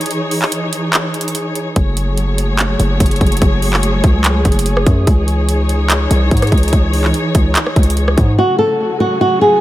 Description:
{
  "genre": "hip hop, trap",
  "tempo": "145 BPM",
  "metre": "4/4",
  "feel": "half-time",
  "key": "C# minor",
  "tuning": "A4 = 441 Hz",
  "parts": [
    { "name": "dark symphonic string section", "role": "sustained chords", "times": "0.0-9.6 s", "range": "C#3 to C#5", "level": "-19 LUFS", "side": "equal", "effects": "none" },
    { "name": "trap drum kit", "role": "drums", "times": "0.0-8.3 s", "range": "handclaps, hi-hat, kick drum, rim click", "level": "-15 LUFS", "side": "equal", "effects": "none" },
    { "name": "distorted 808-style bass", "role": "bass", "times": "1.8-8.4 s", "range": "F#1 to G#2", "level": "-15 LUFS", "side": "equal", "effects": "distortion" },
    { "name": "flamenco guitar", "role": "melody", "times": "8.4-9.6 s", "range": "F#4 to A4", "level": "-11 LUFS", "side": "equal", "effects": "none" }
  ],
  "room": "little or no reverb",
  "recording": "none",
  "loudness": "-12 LUFS",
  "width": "side -15 dB against mid",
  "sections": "0.0-8.4 A section; 8.4-9.6 B section",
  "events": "break 0.0-1.8",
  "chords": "0.0 C#madd9; 1.8 F#madd9; 5.1 C#madd9; 8.4 F#m"
}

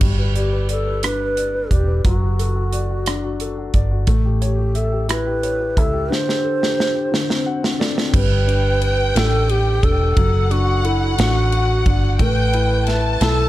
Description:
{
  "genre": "six-eight pop ballad",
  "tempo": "59 BPM (dotted quarters)",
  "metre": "6/8",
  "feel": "straight",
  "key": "G major",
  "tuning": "A4 = 440 Hz",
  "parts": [
    { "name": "warm upright piano", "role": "accompaniment", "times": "0.0-13.5 s", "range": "D3 to F#5", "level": "-25 LUFS", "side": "left 4 dB", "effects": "plate reverb" },
    { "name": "vintage muted fingered electric bass", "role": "bass", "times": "0.0-13.5 s", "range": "E1 to C#2", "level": "-19 LUFS", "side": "equal", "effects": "none" },
    { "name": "modern studio drum kit", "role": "drums", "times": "0.0-13.4 s", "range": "crash cymbal, hi-hat, kick drum, ride cymbal, rim click, snare drum", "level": "-21 LUFS", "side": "right 1 dB", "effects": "none" },
    { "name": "bass bansuri", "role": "melody", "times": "0.4-13.5 s", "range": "E4 to C5", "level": "-23 LUFS", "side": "right 1 dB", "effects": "plate reverb, tape echo" },
    { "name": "warm studio violin section", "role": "second line", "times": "8.1-13.5 s", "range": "F#5 to A5", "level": "-25 LUFS", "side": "left 2 dB", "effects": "plate reverb, tape echo" }
  ],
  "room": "light reverb",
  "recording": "dark, warm production",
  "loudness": "-16 LUFS",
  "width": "side -15 dB against mid",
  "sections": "0.0-8.1 A section; 8.1-13.5 B section",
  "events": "drum fill 6.1-8.1; upright piano fill 7.1-8.1",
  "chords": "0.0 G; 2.0 D/F#; 4.1 A7; 6.1 D7sus4; 7.1 D7; 8.1 Gadd9; 10.2 D/F#; 12.2 A7(no3)"
}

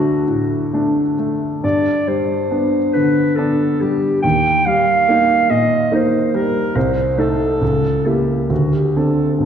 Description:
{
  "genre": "classical, romantic duo for clarinet and grand piano",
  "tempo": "60-72 BPM",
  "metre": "3/4",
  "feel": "rubato",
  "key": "unclear",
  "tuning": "A4 = 441 Hz",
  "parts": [
    { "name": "mellow clarinet", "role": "melody", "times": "0.0-9.3 s", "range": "F#4 to G5", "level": "-18 LUFS", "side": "equal", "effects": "none" },
    { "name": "clear grand piano", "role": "accompaniment", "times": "0.0-9.5 s", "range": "C2 to E4", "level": "-16 LUFS", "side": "equal", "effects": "none" }
  ],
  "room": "wet scoring stage reverb, RT60 1.8 s",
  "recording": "heard from further back in the room",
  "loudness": "-14 LUFS",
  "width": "side -8 dB against mid",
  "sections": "0.0-9.5 A section",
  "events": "none",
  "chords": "0.0 D; 1.6 G; 4.2 Eb; 6.8 Adim/C; 7.6 C#dim7; 8.5 D5"
}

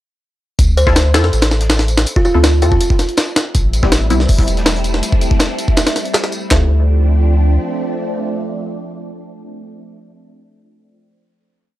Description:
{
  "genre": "drum and bass, jungle",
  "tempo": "162 BPM",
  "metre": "4/4",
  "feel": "straight",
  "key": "D minor",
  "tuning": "A4 = 437 Hz",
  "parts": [
    { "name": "soft dub sub bass", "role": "bass", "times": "0.6-7.6 s", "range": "E1 to F2", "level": "-14 LUFS", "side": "equal", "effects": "none" },
    { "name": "jungle sampler-style drum kit", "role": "drums", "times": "0.6-6.6 s", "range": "handclaps, hi-hat, kick drum, snare drum", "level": "-14 LUFS", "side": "equal", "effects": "small room ambience" },
    { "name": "vintage drum kit", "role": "drums", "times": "0.6-6.4 s", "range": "hi-hat, snare drum, tambourine", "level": "-28 LUFS", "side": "equal", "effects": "high-pass filter on hats, small room ambience, high-pass filter on snare, high-pass filter on perc, high-pass filter on room" },
    { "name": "buzzing kalimba", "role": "melody", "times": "0.8-2.8 s", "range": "F4 to C5", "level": "-20 LUFS", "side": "right 1 dB", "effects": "dub echo" },
    { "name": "filtered dub chord stab", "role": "stabs", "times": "0.9-4.3, 6.5-9.7 s", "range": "G3 to A4", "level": "-22 LUFS", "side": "left 3 dB", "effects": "phaser, analog chorus, dub echo" },
    { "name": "soft string machine", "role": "sustained chords", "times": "3.5-9.7 s", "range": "F3 to E4", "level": "-22 LUFS", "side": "right 1 dB", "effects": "phaser, ensemble chorus" }
  ],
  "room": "little or no reverb",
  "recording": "dry, gritty hardware recording, cassette tape",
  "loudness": "-12 LUFS",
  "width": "side -15 dB against mid",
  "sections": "0.6-6.5 drop; 6.5-9.5 final chord",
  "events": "drop 0.6-6.5",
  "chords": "0.6 Dm7; 3.5 Am7; 6.5 Dm7"
}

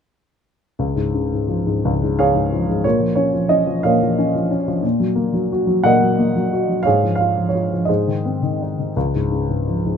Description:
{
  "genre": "classical, lyrical solo piano",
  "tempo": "59 BPM (dotted quarters)",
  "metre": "6/8",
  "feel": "uneven beats, rubato",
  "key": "Db major",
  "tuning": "A4 = 440 Hz",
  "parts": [
    { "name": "dark upright piano", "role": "solo", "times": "0.8-10.0 s", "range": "Db2 to Gb5", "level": "-16 LUFS", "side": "equal", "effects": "none" }
  ],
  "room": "light reverb",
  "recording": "close, detailed microphones",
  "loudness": "-16 LUFS",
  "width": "side -7 dB against mid",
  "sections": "0.8-10.0 A section",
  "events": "none",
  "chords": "0.8 Db; 2.8 Bbm; 4.8 Ebm/Bb; 6.9 Db/Ab; 7.9 Ab; 9.0 Db"
}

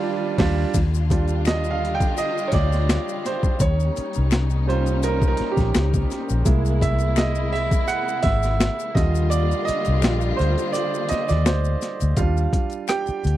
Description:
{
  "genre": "R&B, neo-soul",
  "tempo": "84 BPM",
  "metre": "4/4",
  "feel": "swing 54% on 16ths",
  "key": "Eb major",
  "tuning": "A4 = 440 Hz",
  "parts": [
    { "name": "clear baby grand piano", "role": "accompaniment", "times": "0.0-13.4 s", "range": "D3 to G5", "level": "-24 LUFS", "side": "right 6 dB", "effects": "none" },
    { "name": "warm studio string section", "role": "sustained chords", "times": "0.0-12.1 s", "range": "C3 to F4", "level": "-30 LUFS", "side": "left 8 dB", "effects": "none" },
    { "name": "vintage muted fingered electric bass", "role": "bass", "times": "0.4-13.4 s", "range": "G#1 to Eb2", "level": "-21 LUFS", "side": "left 1 dB", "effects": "none" },
    { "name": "boom bap sampler-style drum kit", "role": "drums", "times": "0.4-13.4 s", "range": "crash cymbal, hi-hat, kick drum, rim click, snare drum", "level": "-22 LUFS", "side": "left 1 dB", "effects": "overdrive" },
    { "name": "maracas and finger snaps", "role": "percussion", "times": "0.7-13.4 s", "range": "none", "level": "-35 LUFS", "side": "left 25 dB", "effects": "none" }
  ],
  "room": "little or no reverb",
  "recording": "dry, close 1970s-style studio recording",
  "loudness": "-19 LUFS",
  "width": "side -14 dB against mid",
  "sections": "0.7-12.2 A section; 12.2-13.4 B section",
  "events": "band accent 0.0-0.7; grand piano solo 0.7-12.2, 12.2-13.4; kick muted 9.3-12.2",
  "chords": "0.0 Ebmaj9; 3.6 Eb7; 6.5 Caug7; 9.0 Ebmaj9"
}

